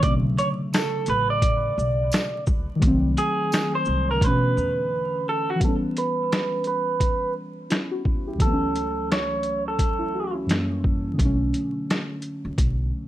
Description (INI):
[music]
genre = lo-fi hip hop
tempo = 86 BPM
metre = 4/4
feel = swing 60% on 16ths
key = B minor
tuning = A4 = 444 Hz
[part]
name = electric guitar through a small old amp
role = melody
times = 0.0-10.3 s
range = F#4 to D5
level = -25 LUFS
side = right 2 dB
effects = low-pass filter
[part]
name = muted felt-like synth keys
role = accompaniment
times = 0.0-13.1 s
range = C#2 to G4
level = -27 LUFS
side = equal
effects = chorus, cassette tape, low-pass filter
[part]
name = upright bass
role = bass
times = 0.0-4.9, 11.2-12.9 s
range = A1 to B2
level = -26 LUFS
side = equal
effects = none
[part]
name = boom bap sampler-style drum kit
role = drums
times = 0.0-12.8 s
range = finger snaps, hi-hat, kick drum, shaker, snare drum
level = -23 LUFS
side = equal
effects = none
[part]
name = tambourine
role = percussion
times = 0.7-3.7 s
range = none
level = -38 LUFS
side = right 2 dB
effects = none
[sound]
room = moderate studio reverb, RT60 0.6 s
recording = vinyl crackle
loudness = -21 LUFS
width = side -13 dB against mid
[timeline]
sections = 0.0-5.6 A section; 5.6-13.1 B section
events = break 4.9-5.6; filter sweep 5.6-13.1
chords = 0.0 Bm9; 2.8 Cdim7; 4.2 Bm11; 5.6 C#m7b5; 8.4 F#m7/C#; 10.5 F#7b9; 11.2 Bm9